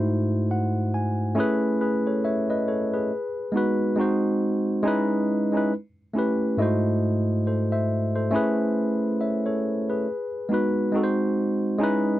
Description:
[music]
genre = R&B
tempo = 69 BPM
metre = 4/4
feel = swing 59% on 16ths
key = unclear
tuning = A4 = 439 Hz
[part]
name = tine electric piano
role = solo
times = 0.0-12.2 s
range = G#2 to G#5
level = -22 LUFS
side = equal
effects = none
[sound]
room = light reverb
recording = dry, close 1970s-style studio recording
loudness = -22 LUFS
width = side -15 dB against mid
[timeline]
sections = 0.0-12.2 A section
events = tine electric piano fill 0.1-1.4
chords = 0.0 G#7b9b13; 1.4 Amaj9; 3.1 G#m7; 4.0 G#7; 4.8 C#m9; 5.7 A9; 6.6 G#7b9b13; 8.3 Amaj9; 10.1 G#m7; 10.9 G#7

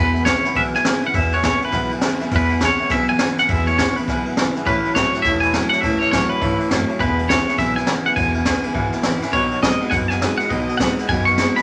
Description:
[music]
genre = rockabilly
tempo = 205 BPM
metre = 4/4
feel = swing 63% on 8ths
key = E major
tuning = A4 = 440 Hz
[part]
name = twangy electric guitar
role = melody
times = 0.0-11.6 s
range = B4 to C#6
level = -22 LUFS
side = equal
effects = tremolo
[part]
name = picked steel-string acoustic guitar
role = accompaniment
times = 0.0-11.6 s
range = E2 to F#4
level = -32 LUFS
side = equal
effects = none
[part]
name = warm upright piano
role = accompaniment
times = 0.0-11.6 s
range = B4 to B5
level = -32 LUFS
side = equal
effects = none
[part]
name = electric guitar through a small old amp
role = riff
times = 0.0-11.6 s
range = E2 to G#3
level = -27 LUFS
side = equal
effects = none
[part]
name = upright bass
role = bass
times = 0.0-11.6 s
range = E1 to E2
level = -28 LUFS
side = equal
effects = none
[part]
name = jazz brush drum kit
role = drums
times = 0.2-11.6 s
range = kick drum, ride cymbal, snare drum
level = -24 LUFS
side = equal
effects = none
[sound]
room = wet studio reverb, RT60 0.6 s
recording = none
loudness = -19 LUFS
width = mono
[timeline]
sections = 0.0-11.6 A section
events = none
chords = 0.0 E; 9.3 B

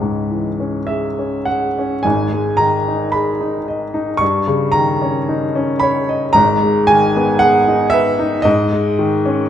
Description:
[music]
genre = classical, romantic nocturne for solo piano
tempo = 50-58 BPM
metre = 4/4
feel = rubato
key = G# minor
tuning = A4 = 440 Hz
[part]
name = clear upright piano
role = solo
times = 0.0-9.5 s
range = G#1 to C#6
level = -14 LUFS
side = equal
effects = none
[sound]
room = wet recital hall reverb, RT60 1.6 s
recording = none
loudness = -14 LUFS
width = side -10 dB against mid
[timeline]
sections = 0.0-2.0 A section; 2.0-9.5 B section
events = none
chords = 0.0 C#m; 2.0 G#m; 4.2 D#7/G; 6.4 G#m; 8.5 D#7(no3)/G#

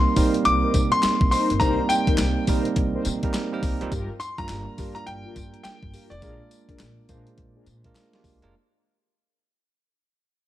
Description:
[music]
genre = R&B, new jack swing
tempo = 104 BPM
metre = 4/4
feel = swing 62% on 16ths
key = C minor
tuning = A4 = 439 Hz
[part]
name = warm concert grand piano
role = melody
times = 0.0-7.9 s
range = D5 to D6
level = -24 LUFS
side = left 2 dB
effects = none
[part]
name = bell-like tine electric piano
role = accompaniment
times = 0.0-8.6 s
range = G3 to C5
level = -27 LUFS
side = right 4 dB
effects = none
[part]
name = upright bass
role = bass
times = 0.0-8.5 s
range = F1 to C3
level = -28 LUFS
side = equal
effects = none
[part]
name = mellow synth brass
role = stabs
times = 0.2-7.7 s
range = D4 to C5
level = -30 LUFS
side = left 2 dB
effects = chorus
[part]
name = crisp 8-bit digital drum machine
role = drums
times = 0.2-8.5 s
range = handclaps, hi-hat, kick drum, snare drum, tambourine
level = -25 LUFS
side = equal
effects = overdrive
[sound]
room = light reverb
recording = dark, warm production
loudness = -20 LUFS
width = side -13 dB against mid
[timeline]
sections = 0.0-8.5 A section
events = fade-out 0.0-8.5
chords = 0.0 Cm7; 3.9 Gm7; 6.2 Bb7

